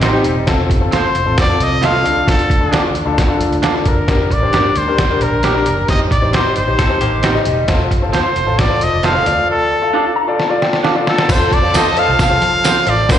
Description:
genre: uptempo 1960s-style soul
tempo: 133 BPM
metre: 4/4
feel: straight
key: unclear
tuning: A4 = 441 Hz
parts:
  - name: semi-hollow electric guitar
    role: riff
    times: 0.0-0.5, 6.8-7.7 s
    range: G3 to A4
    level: -24 LUFS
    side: left 6 dB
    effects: slapback echo
  - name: electric guitar through a small old amp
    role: stabs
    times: 0.0-12.7 s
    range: C4 to D5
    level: -21 LUFS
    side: right 6 dB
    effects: slapback echo
  - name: vintage muted fingered electric bass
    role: bass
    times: 0.0-13.2 s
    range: E1 to F3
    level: -20 LUFS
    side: equal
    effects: none
  - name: lo-fi sampler-style drum kit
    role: drums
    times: 0.0-13.2 s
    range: crash cymbal, hi-hat, kick drum, snare drum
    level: -17 LUFS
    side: equal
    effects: slapback echo
  - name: clear concert grand piano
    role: accompaniment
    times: 0.1-13.2 s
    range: C4 to Bb5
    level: -18 LUFS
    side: left 3 dB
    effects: slapback echo
  - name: brilliant trumpet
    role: melody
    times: 0.9-13.2 s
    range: A4 to F5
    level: -17 LUFS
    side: equal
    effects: slapback echo
  - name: clear studio string section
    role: second line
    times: 11.3-13.2 s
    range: A4 to Bb5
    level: -20 LUFS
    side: left 2 dB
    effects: slapback echo
  - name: tambourine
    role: percussion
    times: 11.3-13.2 s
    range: none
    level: -27 LUFS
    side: right 5 dB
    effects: none
room: light reverb, studio reverb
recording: live gig heard through the venue's PA, recital hall reverb, nothing above 10.8 kHz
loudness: -12 LUFS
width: side -10 dB against mid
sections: 0.0-11.3 A section; 11.3-13.2 B section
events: grand piano fill 9.9-11.3; drum fill 10.4-11.3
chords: 0.5 F; 2.0 Dm; 4.1 Gm; 5.9 Cm/G; 7.7 F; 9.3 Dm; 11.3 F

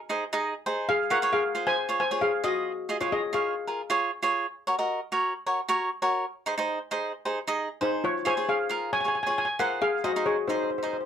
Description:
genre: calypso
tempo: 134 BPM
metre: 4/4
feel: straight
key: Db major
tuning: A4 = 440 Hz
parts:
  - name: cavaquinho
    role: accompaniment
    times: 0.1-11.0 s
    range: Eb4 to Eb5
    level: -27 LUFS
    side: right 2 dB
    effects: none
  - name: steel pan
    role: melody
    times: 0.9-4.2, 7.8-11.1 s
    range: Eb4 to Ab5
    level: -26 LUFS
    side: left 2 dB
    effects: none
room: moderate small room reverb, RT60 0.5 s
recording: none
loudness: -25 LUFS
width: side -8 dB against mid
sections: 0.0-11.1 A section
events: none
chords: 0.0 Ab; 0.9 Db; 4.5 Gb; 6.2 Ab; 8.0 Db; 9.8 Ab

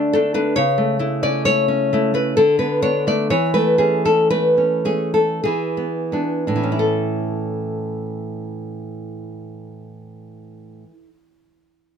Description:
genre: romantic piece for solo classical guitar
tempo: 42-70 BPM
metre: 3/4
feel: rubato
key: A major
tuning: A4 = 438 Hz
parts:
  - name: nylon-string guitar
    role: solo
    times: 0.0-11.1 s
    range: A2 to D5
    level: -17 LUFS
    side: equal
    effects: none
room: light reverb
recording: none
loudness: -16 LUFS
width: side -7 dB against mid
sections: 0.0-6.8 A section; 6.8-10.7 B section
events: slowing down 0.0-6.8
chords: 0.0 D5; 0.6 A/C#; 2.4 Bm7/D; 3.3 A/E; 5.4 E7; 6.8 A

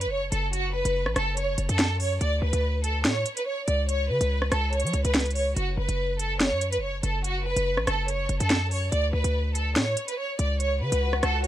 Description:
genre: hip hop, drill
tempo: 143 BPM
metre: 4/4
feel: half-time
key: F# minor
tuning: A4 = 440 Hz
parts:
  - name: rich studio violin section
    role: melody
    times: 0.0-11.5 s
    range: F#4 to D5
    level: -28 LUFS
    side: right 1 dB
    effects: digital delay
  - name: hard-hitting 808-style bass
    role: bass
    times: 0.0-11.5 s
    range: F#1 to E#3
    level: -27 LUFS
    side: equal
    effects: none
  - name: drill drum kit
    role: drums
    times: 0.0-11.5 s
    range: hi-hat, rim click, snare drum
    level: -27 LUFS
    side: equal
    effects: none
  - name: swell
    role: sound effects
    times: 10.9-11.5 s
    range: none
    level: -34 LUFS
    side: left 4 dB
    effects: none
room: little or no reverb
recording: none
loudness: -23 LUFS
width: side -12 dB against mid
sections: 0.0-11.5 A section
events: swell 10.9-11.5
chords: 0.0 F#m; 2.2 D5; 3.9 N.C.; 5.6 F#m; 8.9 D5; 10.6 N.C.

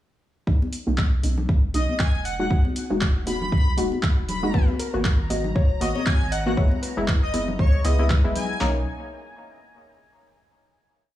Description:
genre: deep house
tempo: 118 BPM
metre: 4/4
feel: swing 57% on 16ths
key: B major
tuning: A4 = 441 Hz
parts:
  - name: filtered dub chord stab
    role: stabs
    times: 0.5-8.8 s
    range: G#3 to F#4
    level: -28 LUFS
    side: left 1 dB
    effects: chorus, sidechain pumping, analog delay
  - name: warm sub bass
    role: bass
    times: 0.5-8.8 s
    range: D#1 to C#2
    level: -26 LUFS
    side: equal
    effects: sidechain pumping
  - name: deep house drum kit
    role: drums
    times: 0.5-8.7 s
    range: handclaps, kick drum, snare drum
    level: -20 LUFS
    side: equal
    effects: small room ambience
  - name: congas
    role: percussion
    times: 0.6-8.5 s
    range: none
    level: -33 LUFS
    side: left 2 dB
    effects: none
  - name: deep house drum kit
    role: drums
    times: 0.7-8.5 s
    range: handclaps, hi-hat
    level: -31 LUFS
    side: equal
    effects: small room ambience
  - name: airy dreamy lead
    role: melody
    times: 1.7-8.6 s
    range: C#5 to B5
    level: -31 LUFS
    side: equal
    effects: chorus, analog delay
  - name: soft round pluck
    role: melody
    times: 4.5-7.8 s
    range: A#4 to D#5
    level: -33 LUFS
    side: left 2 dB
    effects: chorus, analog delay
  - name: soft string machine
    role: texture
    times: 4.9-8.6 s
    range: A#5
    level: -43 LUFS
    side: left 1 dB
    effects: phaser, ensemble chorus, sidechain pumping
room: little or no reverb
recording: dry, gritty hardware recording, studio reverb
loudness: -20 LUFS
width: side -13 dB against mid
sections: 0.5-8.6 groove; 8.6-10.6 final chord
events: filter sweep on synth stab 0.5-8.6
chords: 0.5 Bmaj9; 2.3 Emaj9#11; 4.5 G#m9; 6.6 F#7sus4; 8.6 Bmaj9

